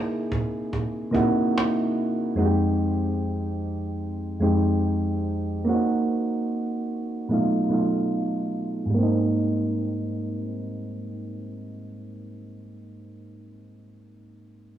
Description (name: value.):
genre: lo-fi hip hop.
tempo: 73 BPM.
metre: 4/4.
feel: swing 64% on 16ths.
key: Ab major.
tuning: A4 = 441 Hz.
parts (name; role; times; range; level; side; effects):
soft electric-piano-like synth keys; accompaniment; 0.0-14.7 s; F2 to G#4; -24 LUFS; right 1 dB; chorus, cassette tape, low-pass filter.
cajon; drums; 0.3-1.8 s; none; -30 LUFS; right 2 dB; none.
room: moderate echo chamber reverb, RT60 2.0 s.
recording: worn, warbling old tape, cassette tape, warbly pitch drift, small room ambience.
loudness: -23 LUFS.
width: side -11 dB against mid.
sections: 0.0-8.9 A section; 8.9-12.2 B section.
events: filter sweep on synth keys 0.0-8.9.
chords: 0.0 C7alt; 2.4 Fm7; 5.7 Cm7b5; 7.3 B7#11; 8.9 Abmaj9.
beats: 0.72 1.54 | 2.37 3.19 4.01 4.83 | 5.65 6.48 7.30 8.12 | 8.94 9.76 10.59 11.41.